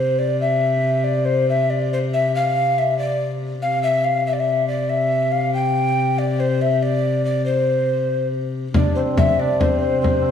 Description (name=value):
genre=medieval dance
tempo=93 BPM (dotted quarters)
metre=6/8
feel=straight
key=C major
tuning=A4 = 440 Hz
part: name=breathy mellow alto recorder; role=melody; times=0.0-10.3 s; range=C5 to G5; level=-20 LUFS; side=left 1 dB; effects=slapback echo
part: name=warm viola da gamba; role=drone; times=0.0-10.3 s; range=C3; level=-22 LUFS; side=left 3 dB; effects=none
part: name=hammered dulcimer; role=second line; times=8.7-10.3 s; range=C4 to D4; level=-22 LUFS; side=right 1 dB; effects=none
part: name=frame drum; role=percussion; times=8.7-10.3 s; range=none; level=-19 LUFS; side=left 1 dB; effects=none
room=wet recital hall reverb, RT60 1.7 s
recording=small room ambience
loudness=-17 LUFS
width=side -8 dB against mid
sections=0.0-8.7 A section; 8.7-10.3 A section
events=none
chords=none